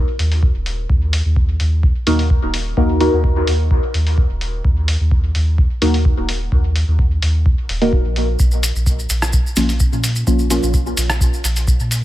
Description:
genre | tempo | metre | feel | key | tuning
dub techno | 128 BPM | 4/4 | straight | Eb minor | A4 = 443 Hz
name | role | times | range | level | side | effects
soft dub sub bass | bass | 0.0-12.0 s | Eb1 to Bb2 | -18 LUFS | equal | sidechain pumping
lo-fi sampler-style drum kit | drums | 0.2-12.0 s | hi-hat, rim click | -25 LUFS | left 1 dB | studio reverb, dub echo
electronic kick drum | drums | 0.4-11.8 s | none | -16 LUFS | equal | studio reverb
deep mellow chord stab | stabs | 2.1-10.7 s | F3 to Bb4 | -20 LUFS | equal | chorus, phaser, sidechain pumping, dub echo
maracas | percussion | 8.4-12.0 s | none | -25 LUFS | equal | none
room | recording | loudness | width
little or no reverb | none | -14 LUFS | side -15 dB against mid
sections
0.0-12.0 A section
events
none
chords
0.0 Ebm; 8.4 Bbm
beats
0.43 | 0.90 1.36 1.83 2.30 | 2.77 3.24 3.71 4.18 | 4.65 5.11 5.58 6.05 | 6.52 6.99 7.46 7.93 | 8.40 8.86 9.33 9.80 | 10.27 10.74 11.21 11.68

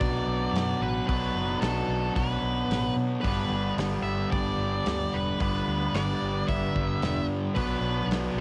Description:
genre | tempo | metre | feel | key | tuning
rock, shoegaze and dream pop | 111 BPM | 4/4 | straight | B minor | A4 = 440 Hz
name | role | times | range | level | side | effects
octave-fuzz lead guitar | melody | 0.0-8.1 s | A4 to E5 | -35 LUFS | equal | distortion, cassette tape, tape echo
biting overdriven guitar | riff | 0.0-8.4 s | G2 to D4 | -34 LUFS | equal | reverse reverb, cassette tape
thick fuzz guitar | riff | 0.0-8.4 s | G2 to B3 | -33 LUFS | equal | distortion, lush chorus, cassette tape
vintage muted fingered electric bass | bass | 0.0-8.4 s | E1 to B2 | -35 LUFS | equal | none
loose indie drum kit | drums | 0.0-8.2 s | hi-hat, kick drum, snare drum | -35 LUFS | equal | cassette tape
room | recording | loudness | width
light reverb | home recording on cassette | -28 LUFS | mono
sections
0.0-8.4 A section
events
none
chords
0.0 Bm; 3.2 G; 7.6 Bm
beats
0.01 0.55 | 1.09 1.63 2.17 2.71 | 3.25 3.79 4.33 4.87 | 5.41 5.95 6.48 7.02 | 7.56 8.10

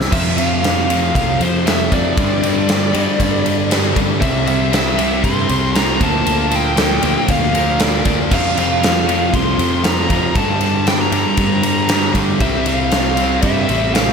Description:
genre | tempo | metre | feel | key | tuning
quiet-loud alternative rock | 117 BPM | 4/4 | straight | unclear | A4 = 440 Hz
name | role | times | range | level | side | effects
fuzz picked electric bass | bass | 0.0-14.1 s | A1 to G2 | -21 LUFS | equal | overdrive
big rock drum kit | drums | 0.0-14.1 s | crash cymbal, kick drum, ride cymbal, snare drum | -18 LUFS | equal | none
bluesy overdriven lead guitar | melody | 0.1-14.1 s | C5 to C6 | -20 LUFS | equal | distortion, slapback echo
cranked stack guitar | riff | 0.1-14.1 s | F2 to C4 | -22 LUFS | left 10 dB | overdrive, slapback echo
overdriven semi-hollow guitar | riff | 0.1-14.1 s | F2 to C4 | -22 LUFS | right 11 dB | slapback echo
overdriven semi-hollow guitar | riff | 0.1-14.1 s | F2 to C4 | -23 LUFS | left 1 dB | phaser, slapback echo
room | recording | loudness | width
moderate lush hall reverb, RT60 2.2 s | big arena sound | -13 LUFS | side -6 dB against mid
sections
0.1-14.1 A section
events
none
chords
0.1 F5; 2.2 G5; 4.2 C; 6.0 Bb/D; 8.3 F5; 10.4 Gmadd9; 12.4 C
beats
| 0.12 0.63 1.15 1.66 | 2.17 2.68 3.20 3.71 | 4.22 4.73 5.24 5.75 | 6.27 6.78 7.29 7.80 | 8.31 8.82 9.34 9.85 | 10.36 10.87 11.38 11.89 | 12.40 12.92 13.43 13.94

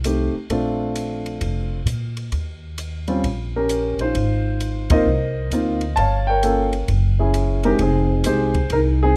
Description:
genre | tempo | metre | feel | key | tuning
jazz piano trio | 132 BPM | 4/4 | swing 66% on 8ths | F minor | A4 = 440 Hz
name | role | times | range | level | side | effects
upright bass | bass | 0.0-9.2 s | F1 to Bb2 | -24 LUFS | equal | none
compact cocktail drum kit | drums | 0.0-8.8 s | hi-hat, kick drum, ride cymbal | -28 LUFS | equal | none
warm grand piano | melody | 0.1-9.2 s | G3 to A5 | -23 LUFS | equal | none
room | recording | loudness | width
little or no reverb | none | -21 LUFS | mono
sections
0.0-9.2 A section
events
band accent 4.8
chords
0.0 F7 (rootless); 0.5 Bbmaj9; 2.3 Eb7; 4.2 Ab69; 6.0 Gm7b5; 6.9 Gbsus2; 7.8 Fm7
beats
0.05 | 0.51 0.96 1.42 1.87 | 2.33 2.78 3.24 3.69 | 4.15 4.61 5.06 5.52 | 5.97 6.43 6.89 7.34 | 7.80 8.25 8.71 9.16

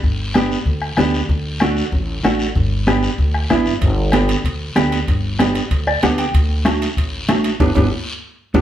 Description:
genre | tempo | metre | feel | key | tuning
latin, cumbia | 190 BPM | 4/4 | straight | G major | A4 = 443 Hz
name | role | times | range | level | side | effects
upright bass | bass | 0.0-8.6 s | G1 to D2 | -21 LUFS | equal | none
bombo | percussion | 0.0-8.6 s | none | -20 LUFS | left 1 dB | none
congas | percussion | 0.0-8.6 s | none | -26 LUFS | equal | none
guiro | percussion | 0.0-8.6 s | none | -29 LUFS | left 2 dB | none
mellow electric guitar | accompaniment | 0.4-8.6 s | A3 to G5 | -18 LUFS | right 1 dB | none
timbales | percussion | 3.8-8.6 s | none | -28 LUFS | right 6 dB | none
room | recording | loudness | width
moderate studio reverb, RT60 0.7 s | heard from further back in the room | -15 LUFS | side -11 dB against mid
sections
0.0-8.6 A section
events
clean electric guitar fill 5.7-6.3; band accent 7.6-8.6; drum fill 8.1-8.6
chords
0.0 G; 1.3 D; 2.6 G; 6.3 D; 7.6 G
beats
| 0.04 0.35 0.67 0.98 | 1.30 1.62 1.93 2.25 | 2.56 2.88 3.19 3.51 | 3.82 4.14 4.45 4.77 | 5.08 5.40 5.71 6.03 | 6.34 6.66 6.97 7.29 | 7.60 7.92 8.23 8.55

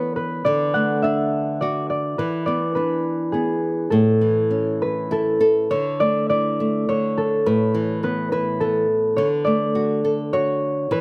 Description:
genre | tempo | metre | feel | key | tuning
children's music, lullaby | 104 BPM | 3/4 | rubato | unclear | A4 = 440 Hz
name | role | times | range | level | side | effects
concert harp | melody | 0.0-11.0 s | G#4 to F#5 | -24 LUFS | equal | none
nylon-string guitar | accompaniment | 0.0-11.0 s | A2 to E5 | -25 LUFS | equal | none
room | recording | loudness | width
light reverb | close, detailed microphones | -21 LUFS | mono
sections
0.0-5.7 A section; 5.7-11.0 B section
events
nylon-string guitar fill 4.8-5.7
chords
0.5 D; 2.2 E7; 3.9 A; 5.7 Dsus2; 7.5 Asus2; 9.2 D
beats
| 0.46 1.04 1.62 | 2.19 2.76 3.33 | 3.92 4.51 5.11 | 5.71 6.30 6.88 | 7.46 8.03 8.60 | 9.17 9.75 10.32 | 10.90

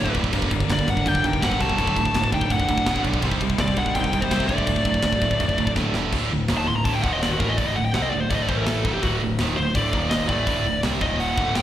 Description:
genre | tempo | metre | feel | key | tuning
heavy metal | 166 BPM | 4/4 | straight | D phrygian dominant | A4 = 440 Hz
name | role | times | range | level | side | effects
high-gain lead guitar | melody | 0.0-11.6 s | F#4 to C6 | -25 LUFS | left 1 dB | distortion, slapback echo, ping-pong delay
dark smooth lead guitar | second line | 0.0-5.7 s | G3 to F#4 | -32 LUFS | right 2 dB | overdrive, slapback echo
pipe organ, flutes | sustained chords | 0.0-6.1 s | F#3 to Eb5 | -33 LUFS | left 2 dB | none
distorted electric guitar | riff | 0.0-11.6 s | D2 to C4 | -26 LUFS | right 7 dB | overdrive, slapback echo
scooped high-gain guitar | riff | 0.0-11.6 s | D2 to C4 | -30 LUFS | left 10 dB | distortion, slapback echo
growling picked electric bass | bass | 0.0-11.6 s | D1 to C2 | -26 LUFS | left 1 dB | overdrive
tight metal drum kit | drums | 0.1-11.6 s | crash cymbal, hi-hat, kick drum, snare drum | -26 LUFS | left 1 dB | none
room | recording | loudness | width
little or no reverb | live gig heard through the venue's PA, recital hall reverb | -20 LUFS | side -12 dB against mid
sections
0.0-6.1 A section; 6.1-11.6 B section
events
drum fill 5.8-6.1; lead electric guitar solo 6.1-11.6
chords
0.3 Gm; 1.8 D; 3.2 Cm; 4.5 D; 6.1 D5; 7.0 Eb5; 7.4 D5; 8.5 A5; 8.8 D5; 9.9 Eb5; 10.3 D5; 11.0 Eb5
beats
| 0.33 0.69 1.06 1.42 | 1.78 2.14 2.50 2.87 | 3.23 3.59 3.95 4.32 | 4.68 5.04 5.40 5.76 | 6.13 6.49 6.85 7.21 | 7.58 7.94 8.30 8.66 | 9.03 9.39 9.75 10.11 | 10.47 10.84 11.20 11.56

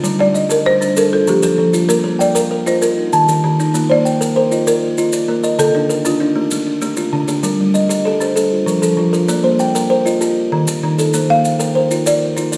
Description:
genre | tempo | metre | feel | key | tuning
southern african traditional, mbira-style interlocking cycle | 130 BPM (dotted quarters) | 12/8 | straight | Bb major | A4 = 439 Hz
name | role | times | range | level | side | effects
buzzing kalimba | arpeggios | 0.0-12.6 s | Eb3 to G5 | -21 LUFS | equal | none
kalimba | arpeggios | 0.0-12.6 s | D3 to A5 | -19 LUFS | equal | none
maracas | percussion | 0.0-12.6 s | none | -29 LUFS | equal | none
folk marimba with medium mallets | melody | 0.2-6.5, 11.3-12.6 s | F4 to F5 | -19 LUFS | equal | none
room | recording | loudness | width
wet recital hall reverb, RT60 1.5 s | recorded in a church or concert hall | -15 LUFS | mono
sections
0.0-3.7 A section; 3.7-12.6 B section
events
none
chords
0.0 G5; 1.0 F; 1.9 Bb5; 2.8 Eb; 3.7 Bb; 5.6 Dm; 7.4 Gm; 8.4 F; 9.3 Bb; 10.2 Eb; 11.1 Bb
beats
| 0.04 0.50 0.96 1.43 | 1.89 2.35 2.82 3.28 | 3.74 4.21 4.67 5.13 | 5.59 6.05 6.52 6.98 | 7.44 7.90 8.36 8.83 | 9.29 9.75 10.21 10.68 | 11.14 11.60 12.06 12.53

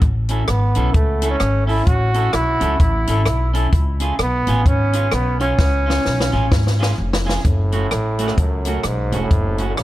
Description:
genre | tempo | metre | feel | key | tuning
ska | 129 BPM | 4/4 | swing 60% on 8ths | F# minor | A4 = 439 Hz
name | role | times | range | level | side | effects
upright bass | bass | 0.0-9.8 s | E1 to C#2 | -19 LUFS | equal | none
compact cocktail drum kit | drums | 0.0-9.8 s | hi-hat, kick drum, rim click, snare drum | -19 LUFS | equal | none
clean electric guitar | accompaniment | 0.3-9.7 s | A3 to A4 | -26 LUFS | right 2 dB | tape echo
bright trombone | melody | 0.5-9.8 s | F#2 to F#4 | -22 LUFS | right 1 dB | tape echo
room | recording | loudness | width
studio reverb | none | -15 LUFS | side -15 dB against mid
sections
0.0-7.4 A section; 7.4-9.8 B section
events
drum fill 5.6-7.4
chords
0.0 A; 3.7 C#; 7.4 F#m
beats
| 0.02 0.48 0.94 1.41 | 1.87 2.34 2.80 3.26 | 3.73 4.19 4.66 5.12 | 5.59 6.05 6.52 6.98 | 7.45 7.91 8.38 8.84 | 9.31 9.78

